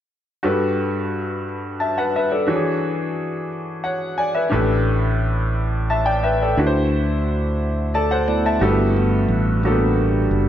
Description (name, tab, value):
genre	gospel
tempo	59 BPM (dotted quarters)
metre	6/8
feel	straight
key	G major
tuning	A4 = 439 Hz
part	bright upright piano	accompaniment	0.4-10.5 s	G2 to A5	-20 LUFS	left 1 dB	none
part	fingered electric bass	bass	4.5-10.5 s	F#1 to D2	-20 LUFS	right 1 dB	none
part	mellow tonewheel organ	sustained chords	8.3-10.5 s	G3 to G4	-22 LUFS	right 2 dB	slow rotary speaker
room	moderate concert hall reverb, RT60 2.1 s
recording	nothing above 7.8 kHz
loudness	-18 LUFS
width	side -10 dB against mid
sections	0.4-8.6 A section; 8.6-10.5 B section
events	upright piano fill 7.6-8.6; tonewheel organ solo 8.6-10.5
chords	0.4 Gmaj9; 2.5 E13; 4.5 A9sus4; 6.6 D9; 8.6 Gmaj9